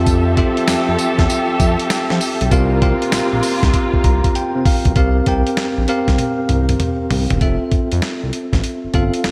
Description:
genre	R&B, new jack swing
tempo	98 BPM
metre	4/4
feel	swing 65% on 16ths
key	F major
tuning	A4 = 440 Hz
part	bell-like tine electric piano	accompaniment	0.0-9.3 s	C4 to Bb5	-22 LUFS	equal	shimmer reverb
part	muted studio string section	sustained chords	0.0-4.9 s	C3 to E5	-24 LUFS	equal	shimmer reverb
part	smooth synth bass	bass	0.0-9.3 s	E1 to F3	-21 LUFS	equal	none
part	boom bap sampler-style drum kit	drums	0.1-9.3 s	hi-hat, kick drum, snare drum, tambourine, toms	-20 LUFS	equal	none
room	light reverb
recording	none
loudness	-17 LUFS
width	mono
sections	0.0-5.0 A section; 5.0-7.4 B section; 7.4-9.3 C section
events	drum fill 3.7-5.0, 6.2-7.4; tine electric piano fill 3.7-5.0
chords	0.0 Fmaj9; 2.5 C7sus4; 7.4 Fmaj7

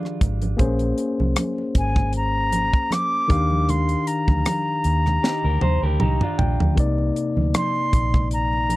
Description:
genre	lush 1970s-style soul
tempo	78 BPM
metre	4/4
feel	swing 54% on 16ths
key	Eb major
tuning	A4 = 440 Hz
part	barky tine electric piano	accompaniment	0.0-8.8 s	C3 to Bb5	-25 LUFS	left 2 dB	none
part	electric guitar through a small old amp	riff	0.0-0.6, 5.2-6.8 s	D4 to C5	-28 LUFS	right 3 dB	none
part	congas	percussion	0.0-8.8 s	none	-30 LUFS	right 2 dB	none
part	tight funk drum kit	drums	0.1-8.8 s	hi-hat, kick drum, rim click, snare drum, toms	-22 LUFS	equal	none
part	vintage muted fingered electric bass	bass	0.2-8.8 s	Ab1 to Eb2	-22 LUFS	equal	none
part	reedy silver concert flute	melody	1.8-8.8 s	Ab5 to D6	-24 LUFS	equal	none
room	little or no reverb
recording	dry, close 1970s-style studio recording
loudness	-18 LUFS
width	side -18 dB against mid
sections	0.0-6.8 A section; 6.8-8.8 A section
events	drum fill 5.2-6.8; tine electric piano fill 5.6-6.8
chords	0.0 Fm9; 0.6 Bbm9; 3.3 Ebmaj9; 6.8 Cm9

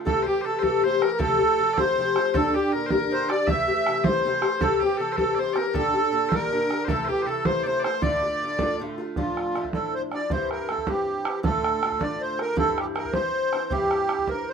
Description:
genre	celtic folk, Celtic jig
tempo	106 BPM (dotted quarters)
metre	6/8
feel	straight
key	D minor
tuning	A4 = 443 Hz
part	Irish bouzouki	accompaniment	0.0-14.5 s	G2 to G4	-27 LUFS	left 4 dB	none
part	accordion	melody	0.1-14.5 s	F4 to E5	-24 LUFS	right 2 dB	light tremolo tuning
part	loud bright bagpipes	second line	0.1-8.8 s	G4 to E5	-31 LUFS	left 6 dB	none
part	bodhran	percussion	0.1-14.4 s	none	-28 LUFS	right 2 dB	none
room	moderate studio reverb, RT60 0.6 s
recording	minimal, uncompressed stereo recording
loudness	-22 LUFS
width	side -6 dB against mid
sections	0.1-9.2 A section; 9.2-14.5 B section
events	none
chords	0.1 Am7; 1.2 Fadd9; 2.3 Gm; 3.5 Am7; 4.6 C; 5.8 Gm/Bb; 6.9 Am; 8.0 Dm; 9.2 Dmadd9; 10.3 C; 11.4 Dm; 12.6 C

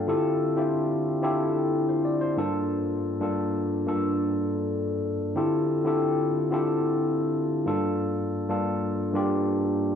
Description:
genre	soul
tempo	91 BPM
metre	4/4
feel	straight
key	D minor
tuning	A4 = 440 Hz
part	barky tine electric piano	solo	0.0-10.0 s	G2 to D5	-24 LUFS	left 1 dB	overdrive, lush chorus
room	wet booth ambience, RT60 0.2 s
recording	home recording on cassette, studio reverb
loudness	-24 LUFS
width	side -8 dB against mid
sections	0.0-10.0 A section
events	tine electric piano fill 9.6-10.0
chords	0.1 Dm11; 2.4 Gm9; 5.4 Dm11; 7.7 Gm9

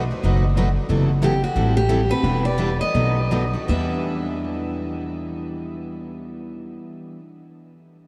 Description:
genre	acoustic string swing (jazz manouche)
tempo	156-183 BPM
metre	4/4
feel	swing 60% on 8ths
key	E minor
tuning	A4 = 440 Hz
part	picked steel-string acoustic guitar	melody	0.0-6.8 s	F#4 to E5	-28 LUFS	equal	tape echo
part	picked plugged-in steel-string acoustic guitar	accompaniment	0.0-7.2 s	B2 to B4	-32 LUFS	equal	none
part	picked steel-string acoustic guitar	accompaniment	0.0-7.2 s	B2 to A4	-30 LUFS	equal	none
part	upright bass	bass	0.0-6.8 s	E1 to E2	-25 LUFS	equal	none
room	wet huge ambient reverb, RT60 7.4 s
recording	dreamy mix soaked in reverb, cassette tape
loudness	-22 LUFS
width	mono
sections	0.9-3.7 A section; 3.7-6.8 B section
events	slowing down 0.9-3.7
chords	0.0 B7; 0.9 F#m7b5; 1.6 Am7; 2.2 Em7; 2.9 B7; 3.7 Em7

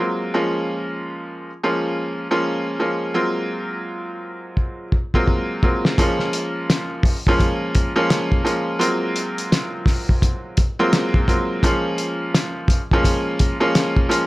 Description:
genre	hip hop, boom-bap hip-hop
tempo	85 BPM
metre	4/4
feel	swing 62% on 16ths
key	Bb minor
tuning	A4 = 438 Hz
part	bright upright piano	accompaniment	0.0-14.3 s	F3 to F4	-21 LUFS	equal	high-pass filter, low-pass filter
part	cloth-damped thuddy drum kit	drums	4.6-14.3 s	hi-hat, kick drum, snare drum	-18 LUFS	equal	none
room	little or no reverb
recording	none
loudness	-18 LUFS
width	side -19 dB against mid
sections	0.0-6.0 A section; 6.0-14.3 B section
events	drum fill 4.6-6.0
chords	0.3 Bbm7; 3.2 Ab13; 6.0 Bbm7; 8.8 Ab13; 11.6 Bbm7

